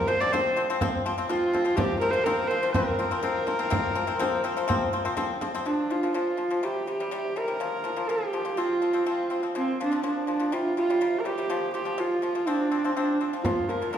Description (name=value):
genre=mongolian traditional, Mongolian folk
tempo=123 BPM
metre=4/4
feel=straight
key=Bb gong mode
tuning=A4 = 440 Hz
part: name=warm horsehead fiddle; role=melody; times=0.0-14.0 s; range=C4 to D5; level=-26 LUFS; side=right 1 dB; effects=none
part: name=pipa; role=arpeggios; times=0.0-14.0 s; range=Bb2 to C4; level=-29 LUFS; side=left 4 dB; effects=none
part: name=frame drum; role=percussion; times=0.2-5.5, 13.4-14.0 s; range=none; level=-31 LUFS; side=right 1 dB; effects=none
room=wet recital hall reverb, RT60 1.4 s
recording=heard from further back in the room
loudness=-24 LUFS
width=side -9 dB against mid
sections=0.0-5.7 A section; 5.7-14.0 B section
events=none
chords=0.0 F5; 5.7 Bb5; 6.6 C5; 7.6 Bb5; 8.6 F5; 9.6 Bb5; 10.5 C5; 11.5 Bb5; 12.5 F5; 13.4 Bb5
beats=0.33 0.81 1.30 | 1.78 2.27 2.75 3.24 | 3.72 4.21 4.69 5.17 | 5.66 6.15 6.63 7.12 | 7.61 8.09 8.58 9.07 | 9.55 10.04 10.53 11.01 | 11.50 11.99 12.47 12.96 | 13.45 13.93